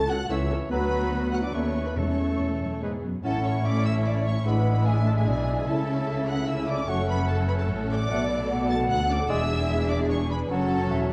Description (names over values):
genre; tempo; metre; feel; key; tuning
quick classical-period movement for symphony orchestra; 148 BPM; 3/4; rubato; A major; A4 = 439 Hz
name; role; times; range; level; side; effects
warm studio violin section; melody; 0.0-11.1 s; G#5 to A6; -39 LUFS; equal; none
bright oboe; second line; 0.0-11.1 s; A4 to F#5; -40 LUFS; equal; none
mellow hollow silver concert flute; second line; 0.0-11.1 s; B4 to A5; -36 LUFS; equal; none
warm studio violin section; second line; 0.0-11.1 s; G#4 to A5; -38 LUFS; equal; none
clear bassoon; accompaniment; 0.0-11.1 s; E3 to A3; -37 LUFS; equal; none
mellow French horn section; sustained chords; 0.0-11.1 s; F#3 to F#4; -33 LUFS; equal; none
rich studio double bass section; bass; 0.0-11.1 s; E1 to D#2; -31 LUFS; equal; none
warm studio cello section; bass; 0.0-11.1 s; C#2 to C#3; -32 LUFS; equal; none
rich studio viola section; accompaniment; 0.1-11.1 s; A3 to A4; -35 LUFS; equal; none
timpani; percussion; 2.0-2.6 s; E2; -35 LUFS; equal; none
room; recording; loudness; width
moderate scoring stage reverb, RT60 1.5 s; dark, warm production; -25 LUFS; mono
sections
0.0-3.2 A section; 3.2-11.1 B section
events
none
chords
0.0 A/C#; 0.7 Bm/D; 1.5 B7/D#; 2.0 A/E; 2.8 E; 3.2 A; 4.5 E7/A; 5.7 A/C#; 6.9 F#m; 8.1 Bm7; 9.3 E7; 10.5 F#m